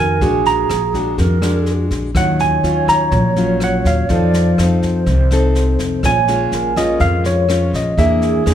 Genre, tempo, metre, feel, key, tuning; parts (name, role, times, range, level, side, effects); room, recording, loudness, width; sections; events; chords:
bossa nova; 124 BPM; 4/4; straight; A4 = 441 Hz
barky tine electric piano; melody; 0.0-8.4 s; Db5 to Bb5; -18 LUFS; right 2 dB; overdrive, phaser
mellow alto flute; second line; 0.0-8.5 s; Ab4 to D5; -23 LUFS; right 7 dB
nylon-string guitar; accompaniment; 0.0-8.5 s; Bb2 to Bb4; -18 LUFS; left 3 dB
upright bass; bass; 0.0-8.5 s; Bb1 to F2; -18 LUFS; equal
jazz brush drum kit; drums; 0.2-8.5 s; kick drum, rim click, snare drum; -24 LUFS; equal
moderate recital hall reverb, RT60 1.3 s; recorded in a church or concert hall; -13 LUFS; side -10 dB against mid
0.0-8.5 A section
0.2 Bb7b13; 2.2 Ebm9; 4.1 F7; 6.0 Bbm7; 8.0 E7#11